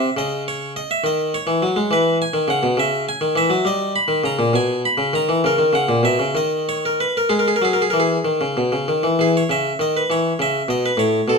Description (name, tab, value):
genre	classical, baroque-style suite movement for harpsichord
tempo	62-70 BPM (dotted quarters)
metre	6/8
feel	rubato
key	G# minor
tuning	A4 = 440 Hz
part	harpsichord	solo	0.0-11.4 s	A2 to B5	-17 LUFS	equal	none
room	wet stone room reverb, RT60 1.0 s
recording	dark, warm production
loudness	-17 LUFS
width	side -4 dB against mid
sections	0.0-9.2 A section; 9.2-11.4 A section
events	none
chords	0.2 C#m; 1.9 E5; 2.8 C#madd9; 3.6 D#7/G; 4.5 Bmaj13; 5.4 A#dim; 6.3 N.C.; 7.3 G#5; 9.2 C#m